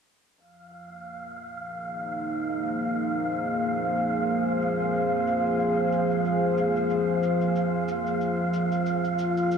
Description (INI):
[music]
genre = organic downtempo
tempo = 92 BPM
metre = 4/4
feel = swing 56% on 16ths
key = F minor pentatonic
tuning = A4 = 439 Hz
[part]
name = warm analog pad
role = sustained chords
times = 0.4-9.6 s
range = F3 to C5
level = -26 LUFS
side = equal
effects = chorus
[part]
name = cabasa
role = drums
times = 0.4-9.6 s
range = none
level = -54 LUFS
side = left 2 dB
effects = overdrive, low-pass filter on perc, low-pass filter on room
[part]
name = wind-like tuned noise texture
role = texture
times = 0.8-9.6 s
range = F5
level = -29 LUFS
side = right 2 dB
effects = built-in reverb
[sound]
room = wet huge ambient reverb, RT60 7.3 s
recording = dreamy mix soaked in reverb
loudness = -24 LUFS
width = side -6 dB against mid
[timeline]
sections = 0.4-9.6 A section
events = filter sweep on drum 0.4-9.6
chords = 0.4 Fm7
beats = | 0.38 1.03 1.69 2.34 | 2.99 3.64 4.29 4.95 | 5.60 6.25 6.90 7.55 | 8.21 8.86 9.51